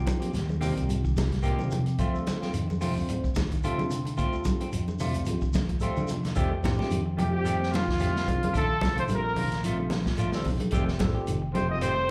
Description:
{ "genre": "afrobeat", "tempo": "110 BPM", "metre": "4/4", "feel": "swing 55% on 16ths", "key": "unclear", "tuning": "A4 = 440 Hz", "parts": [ { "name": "overdriven tine electric piano", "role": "accompaniment", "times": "0.0-12.0 s", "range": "G3 to G5", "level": "-39 LUFS", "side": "equal", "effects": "phaser, plate reverb, slapback echo" }, { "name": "fingered electric bass", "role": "bass", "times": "0.0-12.1 s", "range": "F1 to D3", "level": "-32 LUFS", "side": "equal", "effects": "none" }, { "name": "mellow electric guitar", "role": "arpeggios", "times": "0.1-11.8 s", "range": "D3 to A3", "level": "-37 LUFS", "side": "equal", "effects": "plate reverb" }, { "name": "semi-hollow electric guitar", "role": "stabs", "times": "0.1-12.1 s", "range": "Eb3 to G4", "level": "-37 LUFS", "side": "equal", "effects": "spring reverb, slapback echo, plate reverb" }, { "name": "vintage drum kit", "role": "drums", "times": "0.1-12.0 s", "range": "hi-hat, kick drum, snare drum", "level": "-34 LUFS", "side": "equal", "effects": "none" }, { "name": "congas", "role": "percussion", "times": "0.1-11.7 s", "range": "none", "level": "-35 LUFS", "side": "equal", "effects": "none" }, { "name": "shekere", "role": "percussion", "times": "0.1-12.0 s", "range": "none", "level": "-42 LUFS", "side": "equal", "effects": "none" }, { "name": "breathy trumpet", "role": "melody", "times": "7.2-12.1 s", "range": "F4 to Eb5", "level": "-32 LUFS", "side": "equal", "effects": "plate reverb, slapback echo" }, { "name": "breathy trumpet", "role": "second line", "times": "7.2-12.1 s", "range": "F4 to Eb5", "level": "-39 LUFS", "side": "equal", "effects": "plate reverb, slapback echo" } ], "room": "moderate club ambience, RT60 0.5 s", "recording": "live gig heard through the venue's PA, club reverb", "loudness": "-27 LUFS", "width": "mono", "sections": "0.0-6.4 A section; 6.4-12.1 B section", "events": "tine electric piano fill 9.9-10.7", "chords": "0.0 Cm7; 2.0 Dm7; 6.4 F9; 8.5 Bbmaj7; 10.7 F9", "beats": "0.34 0.89 1.44 | 1.99 2.54 3.08 3.63 | 4.18 4.72 5.27 5.82 | 6.36 6.91 7.45 8.00 | 8.55 9.09 9.64 10.18 | 10.73 11.28 11.82" }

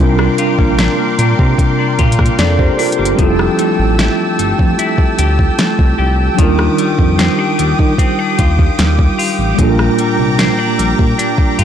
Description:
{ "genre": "contemporary R&B", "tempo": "75 BPM", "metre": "4/4", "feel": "straight", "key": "F major", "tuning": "A4 = 435 Hz", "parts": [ { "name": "mellow tine electric piano", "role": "accompaniment", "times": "0.0-11.6 s", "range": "Gb3 to D5", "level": "-17 LUFS", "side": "right 2 dB", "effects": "medium stereo tremolo" }, { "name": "lush unison pad", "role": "sustained chords", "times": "0.0-11.6 s", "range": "G4 to E6", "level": "-19 LUFS", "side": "equal", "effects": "chorus" }, { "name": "semi-hollow electric guitar", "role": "arpeggios", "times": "0.0-11.6 s", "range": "Bb2 to G4", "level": "-19 LUFS", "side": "left 6 dB", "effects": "digital delay" }, { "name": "smooth synth bass", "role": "bass", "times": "0.0-11.6 s", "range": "F1 to Eb3", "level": "-15 LUFS", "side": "equal", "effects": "none" }, { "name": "smooth R&B drum kit", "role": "drums", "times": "0.2-11.6 s", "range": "hi-hat, kick drum, rim click, snare drum", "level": "-15 LUFS", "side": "equal", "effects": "soft clipping on snare" } ], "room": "light reverb", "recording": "blown-out, overdriven recording, overdrive", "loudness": "-10 LUFS", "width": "side -9 dB against mid", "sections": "0.0-3.2 A section; 3.2-11.6 B section", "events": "none", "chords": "0.0 C9sus4; 3.2 Fmaj9; 6.4 Ebmaj9; 9.6 Bb6", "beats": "0.79 1.59 2.39 | 3.19 3.99 4.79 5.59 | 6.39 7.19 7.99 8.79 | 9.59 10.39 11.19" }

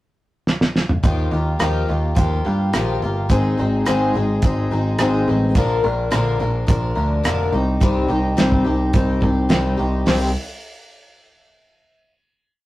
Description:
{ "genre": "folk rock and heartland rock", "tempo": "106 BPM", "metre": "4/4", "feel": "straight", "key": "C minor", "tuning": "A4 = 439 Hz", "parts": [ { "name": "cloth-damped thuddy drum kit", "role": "drums", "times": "0.5-10.2 s", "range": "hi-hat, kick drum, rim click, snare drum, toms", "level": "-19 LUFS", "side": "right 1 dB", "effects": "none" }, { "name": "picked twelve-string acoustic guitar", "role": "accompaniment", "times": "1.0-10.3 s", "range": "Ab2 to Bb4", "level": "-20 LUFS", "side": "left 2 dB", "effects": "none" }, { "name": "picked electric bass", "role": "bass", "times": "1.0-10.3 s", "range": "F1 to G2", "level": "-21 LUFS", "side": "equal", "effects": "none" } ], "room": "moderate studio reverb, RT60 0.5 s", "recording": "rough rehearsal-room recording, tube saturation", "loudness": "-16 LUFS", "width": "side -17 dB against mid", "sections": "0.0-1.0 pickup bar; 1.0-10.1 verse; 10.1-12.3 final chord", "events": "drum fill 0.5-1.0", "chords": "0.0 N.C.; 1.0 Ebadd9; 3.3 Ab; 5.6 Bb; 7.5 Cm; 10.1 C5", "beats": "0.47 | 1.03 1.60 2.16 2.73 | 3.29 3.86 4.42 4.99 | 5.55 6.12 6.68 7.25 | 7.82 8.38 8.94 9.51 | 10.07" }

